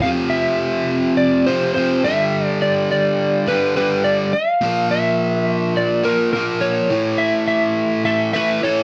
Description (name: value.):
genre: rock.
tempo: 105 BPM.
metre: 4/4.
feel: straight.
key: unclear.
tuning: A4 = 441 Hz.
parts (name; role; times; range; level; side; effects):
electric slide guitar; melody; 0.0-8.8 s; Bb4 to F5; -21 LUFS; equal; slapback echo.
distorted electric guitar; riff; 0.0-8.8 s; F2 to Bb3; -21 LUFS; equal; distortion.
fuzz lead guitar; second line; 8.1-8.8 s; A4 to B4; -27 LUFS; equal; distortion.
room: studio reverb.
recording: dry, close 1970s-style studio recording.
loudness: -18 LUFS.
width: mono.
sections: 0.0-8.8 A section.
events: none.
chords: 0.0 F5; 2.0 G5; 4.6 Bb5; 6.9 A5.